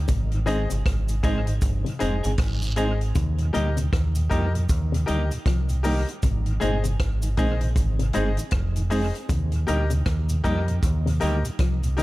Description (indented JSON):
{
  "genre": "roots reggae",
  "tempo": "78 BPM",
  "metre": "4/4",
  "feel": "swing 60% on 16ths",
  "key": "Eb major",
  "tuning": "A4 = 441 Hz",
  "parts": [
    { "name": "deep dub fingered electric bass", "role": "bass", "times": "0.0-12.0 s", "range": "F1 to F2", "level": "-24 LUFS", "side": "equal", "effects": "none" },
    { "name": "electric guitar with an envelope filter", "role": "arpeggios", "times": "0.1-12.0 s", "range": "Ab2 to F3", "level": "-32 LUFS", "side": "left 5 dB", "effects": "none" },
    { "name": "vintage drum kit", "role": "drums", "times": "0.1-12.0 s", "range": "hi-hat, kick drum, rim click", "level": "-27 LUFS", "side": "equal", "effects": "none" },
    { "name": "cabasa and guiro", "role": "percussion", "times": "0.1-12.0 s", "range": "none", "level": "-40 LUFS", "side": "right 1 dB", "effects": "none" },
    { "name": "mellow tonewheel organ", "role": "accompaniment", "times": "0.3-12.0 s", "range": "Eb2 to Eb4", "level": "-33 LUFS", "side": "equal", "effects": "chorus vibrato, slow rotary speaker, dub echo" },
    { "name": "semi-hollow electric guitar", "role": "accompaniment", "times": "0.5-12.0 s", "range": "G3 to Ab4", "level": "-32 LUFS", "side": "right 2 dB", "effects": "dub echo" },
    { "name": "bright grand piano", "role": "stabs", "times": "0.5-12.0 s", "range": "G4 to Eb5", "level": "-31 LUFS", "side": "left 3 dB", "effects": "none" }
  ],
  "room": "small room ambience",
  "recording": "none",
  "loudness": "-21 LUFS",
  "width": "side -18 dB against mid",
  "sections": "0.0-3.2 A section; 3.2-12.0 B section",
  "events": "none",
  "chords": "0.1 Ab; 3.2 Eb; 6.2 Ab; 9.3 Eb"
}